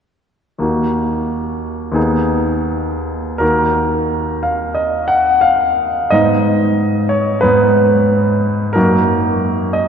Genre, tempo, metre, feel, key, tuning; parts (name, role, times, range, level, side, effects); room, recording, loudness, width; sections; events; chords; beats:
classical, romantic character piece for solo piano; 89 BPM; 4/4; uneven beats, rubato; Eb minor; A4 = 444 Hz
clear baby grand piano; solo; 0.6-9.9 s; Eb2 to Gb5; -13 LUFS; equal
wet church reverb, RT60 3.8 s; dark, warm production; -13 LUFS; side -7 dB against mid
0.6-3.4 A section; 3.4-9.9 B section
0.6 Ebm; 2.0 Abm/Eb; 3.4 Ebm; 6.1 Abm; 8.8 Ebm/Gb
| 0.63 1.31 1.96 2.67 | 3.41 4.10 4.78 5.45 | 6.12 6.80 7.45 8.11 | 8.76 9.40